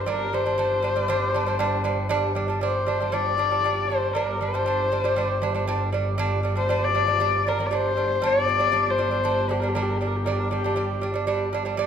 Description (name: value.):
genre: mongolian traditional, Mongolian folk.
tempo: 118 BPM.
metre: 4/4.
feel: straight.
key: G yu mode.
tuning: A4 = 440 Hz.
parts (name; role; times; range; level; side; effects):
warm horsehead fiddle; melody; 0.0-11.0 s; G4 to D5; -24 LUFS; left 4 dB; none.
lute; arpeggios; 0.0-11.9 s; G3 to D4; -26 LUFS; right 4 dB; none.
clear double bass; drone; 0.0-11.9 s; G1; -29 LUFS; equal; none.
room: wet recital hall reverb, RT60 1.7 s.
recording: none.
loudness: -21 LUFS.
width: side -8 dB against mid.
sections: 0.0-11.9 A section.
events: none.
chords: 0.0 G5.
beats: | 0.07 0.58 1.09 1.60 | 2.11 2.62 3.13 3.65 | 4.16 4.67 5.17 5.68 | 6.19 6.70 7.21 7.72 | 8.23 8.74 9.25 9.76 | 10.26 10.77 11.28 11.79.